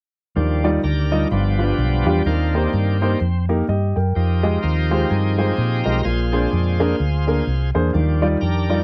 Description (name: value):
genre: gospel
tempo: 127 BPM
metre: 4/4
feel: swing 58% on 8ths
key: Eb major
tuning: A4 = 440 Hz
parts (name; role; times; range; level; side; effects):
- warm grand piano; accompaniment; 0.4-8.8 s; G2 to G5; -24 LUFS; equal; none
- bright tonewheel organ; sustained chords; 0.4-8.8 s; Eb3 to C5; -27 LUFS; equal; fast rotary speaker, overdrive
- hollow-body short-scale fingered electric bass; bass; 0.4-8.8 s; G1 to Bb2; -22 LUFS; equal; none
room: light reverb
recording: dark, warm production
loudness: -19 LUFS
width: mono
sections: 0.4-8.8 A section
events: tonewheel organ solo 0.4-8.8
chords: 0.4 Ebmaj9; 1.3 G7; 2.3 Cm7/Eb; 4.2 Fm9; 6.0 Bb9; 7.9 Ebmaj9